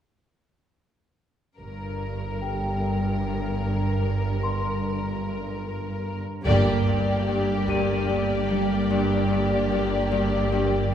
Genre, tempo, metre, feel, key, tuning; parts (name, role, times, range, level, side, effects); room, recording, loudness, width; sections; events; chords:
cinematic, suspense film score; 74 BPM; 3/4; straight; G minor; A4 = 440 Hz
rich symphonic violin section; melody; 1.6-10.9 s; Bb4 to D5; -31 LUFS; left 3 dB
rich symphonic cello section; bass; 1.6-10.9 s; G2; -28 LUFS; right 1 dB
rich symphonic double bass section; bass; 1.6-10.9 s; G1; -28 LUFS; right 1 dB
large celesta; texture; 2.4-10.9 s; G4 to Eb7; -35 LUFS; left 1 dB
rich studio violin section; second line; 6.5-10.9 s; G4; -30 LUFS; left 1 dB
rich symphonic viola section; accompaniment; 6.5-10.9 s; Bb3; -30 LUFS; right 1 dB
Celtic harp; riff; 6.5-10.9 s; G2 to G3; -27 LUFS; left 1 dB
solo taiko drums; drums; 6.5-8.0 s; -36 LUFS; right 1 dB
wet scoring stage reverb, RT60 2.0 s; heard from further back in the room; -22 LUFS; side -9 dB against mid
1.6-6.5 A section; 6.5-10.9 B section
band accent 6.5-7.3
1.6 Gm